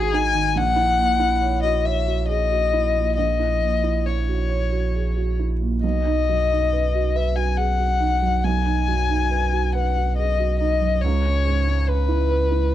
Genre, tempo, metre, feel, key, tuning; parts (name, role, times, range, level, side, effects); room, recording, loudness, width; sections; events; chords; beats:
neoclassical piano and strings; 69 BPM; 3/4; rubato; A4 = 441 Hz
dark violin; melody; 0.0-12.7 s; G#4 to G#5; -22 LUFS; left 6 dB; cassette tape
felt-muted upright piano; accompaniment; 0.0-12.7 s; A#1 to C#5; -26 LUFS; right 8 dB; cassette tape
warm sub bass; bass; 0.0-12.7 s; G#1 to C#2; -22 LUFS; equal
small room ambience; home recording on cassette; -19 LUFS; side -12 dB against mid
0.0-12.7 A section
0.0 G#m7; 0.6 F#7/A#; 5.8 B; 11.0 C#m7
| 0.56 1.42 2.28 | 3.17 4.06 4.95 | 5.83 6.71 7.58 | 8.44 9.31 10.17 | 11.03 11.88 12.74